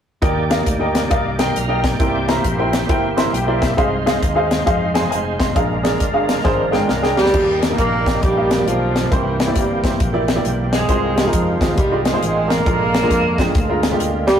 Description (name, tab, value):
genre	uptempo gospel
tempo	135 BPM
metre	4/4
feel	swing 64% on 8ths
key	Eb major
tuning	A4 = 440 Hz
part	clear upright piano	accompaniment	0.2-14.3 s	Bb2 to C6	-20 LUFS	equal	none
part	overdriven tonewheel organ	sustained chords	0.2-14.4 s	D3 to C6	-24 LUFS	right 2 dB	slow rotary speaker, chorus vibrato
part	fingered electric bass	bass	0.2-14.4 s	F1 to F2	-24 LUFS	equal	none
part	crisp fusion drum kit	drums	0.2-14.3 s	crash cymbal, hi-hat, kick drum, snare drum	-20 LUFS	left 1 dB	none
part	clean electric guitar	second line	6.4-7.3 s	F3 to Bb4	-24 LUFS	equal	none
part	breathy tenor saxophone	melody	7.2-14.4 s	E3 to Bb3	-20 LUFS	right 2 dB	none
part	clear horn section	melody	7.2-14.4 s	E3 to Bb4	-27 LUFS	left 1 dB	none
room	wet stone room reverb, RT60 1.3 s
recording	rough rehearsal-room recording, tube saturation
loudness	-15 LUFS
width	side -8 dB against mid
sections	0.2-7.3 A section; 7.3-14.4 B section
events	upright piano fill 2.9-3.8; drum fill 6.4-7.3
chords	0.2 Ebmaj7; 2.0 C7; 3.8 Fm7/C; 5.6 Bb7; 7.3 Ebmaj7; 9.1 C7; 10.9 Fm7/C; 12.7 Bb7